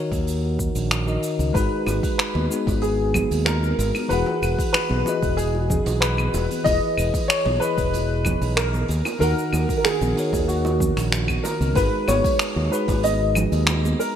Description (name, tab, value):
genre	sunset chillout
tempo	94 BPM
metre	4/4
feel	straight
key	G# minor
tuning	A4 = 440 Hz
part	bell-like tine electric piano	accompaniment	0.0-14.2 s	D#3 to F#5	-26 LUFS	moving between left 5 dB and right 3 dB	auto-pan, ping-pong delay
part	modern bright fingered electric bass	bass	0.1-13.9 s	E1 to D#2	-23 LUFS	equal	none
part	electronic kick drum	drums	0.1-13.0 s	none	-26 LUFS	equal	none
part	vintage brush drum kit	drums	0.1-14.1 s	cabasa, claves, finger snaps, hi-hat	-27 LUFS	equal	gated reverb
part	warm grand piano	melody	1.5-14.2 s	F#4 to D#5	-24 LUFS	equal	analog chorus, ping-pong delay
part	bongos and congas	percussion	1.5-14.0 s	none	-32 LUFS	right 3 dB	none
room	moderate plate reverb, RT60 2.8 s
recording	bright 1980s-style digital production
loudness	-19 LUFS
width	side -9 dB against mid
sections	0.0-11.8 A section; 11.8-14.2 B section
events	none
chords	0.0 D#m7; 1.6 G#m9; 4.1 Emaj7; 8.9 D#m7; 11.8 G#m7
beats	0.27 0.91 | 1.55 2.19 2.83 3.46 | 4.10 4.74 5.38 6.02 | 6.66 7.29 7.93 8.57 | 9.21 9.85 10.49 11.12 | 11.76 12.40 13.04 13.68